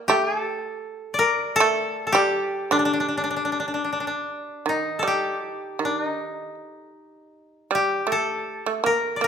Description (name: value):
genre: japanese traditional, Japanese chamber music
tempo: 79 BPM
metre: 2/4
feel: uneven beats, rubato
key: D miyako bushi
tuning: A4 = 439 Hz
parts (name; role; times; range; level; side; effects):
- koto; melody; 0.0-9.3 s; D4 to D5; -23 LUFS; left 2 dB; none
- shamisen; second line; 0.0-9.3 s; D3 to Bb3; -25 LUFS; right 5 dB; none
room: moderate recital hall reverb, RT60 1.4 s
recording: minimal, uncompressed stereo recording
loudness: -21 LUFS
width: side -7 dB against mid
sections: 0.0-4.7 A section; 4.7-9.3 B section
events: none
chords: none